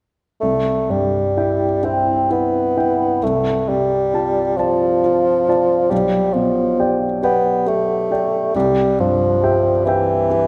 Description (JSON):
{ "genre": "classical, romantic duo for bassoon and grand piano", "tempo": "41-46 BPM (dotted quarters)", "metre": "6/8", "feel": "rubato", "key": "C major", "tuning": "A4 = 440 Hz", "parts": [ { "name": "mellow bassoon", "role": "melody", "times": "0.4-10.5 s", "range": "E3 to C4", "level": "-19 LUFS", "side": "equal", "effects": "none" }, { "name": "clear grand piano", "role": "accompaniment", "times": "0.4-10.5 s", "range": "B1 to A5", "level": "-22 LUFS", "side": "equal", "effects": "none" } ], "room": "wet recital hall reverb, RT60 1.7 s", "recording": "none", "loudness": "-17 LUFS", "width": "mono", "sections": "0.4-10.5 A section", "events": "none", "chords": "0.4 C; 3.2 Dm7/C; 5.9 G/B; 8.5 C", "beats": "| 0.41 1.83 | 3.22 4.58 | 5.91 7.22 | 8.55 9.86" }